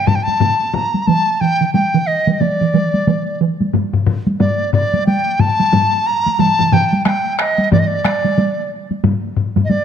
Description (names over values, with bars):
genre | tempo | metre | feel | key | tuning
japanese traditional, taiko drum ensemble | 90 BPM | 4/4 | swing 60% on 16ths | D miyako bushi | A4 = 441 Hz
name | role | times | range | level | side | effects
large dizi | melody | 0.0-9.8 s | D5 to Bb5 | -17 LUFS | equal | none
taiko ensemble | percussion | 0.1-9.8 s | none | -19 LUFS | right 1 dB | none
taiko ensemble | percussion | 0.1-9.7 s | none | -18 LUFS | left 6 dB | none
taiko ensemble | percussion | 1.1-8.2 s | none | -18 LUFS | right 6 dB | none
room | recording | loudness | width
moderate scoring stage reverb, RT60 1.7 s | close, detailed microphones | -13 LUFS | side -8 dB against mid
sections
0.0-9.8 A section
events
none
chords
none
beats
0.41 | 1.07 1.74 2.41 3.07 | 3.74 4.40 5.07 5.73 | 6.39 7.05 7.71 8.38 | 9.04 9.70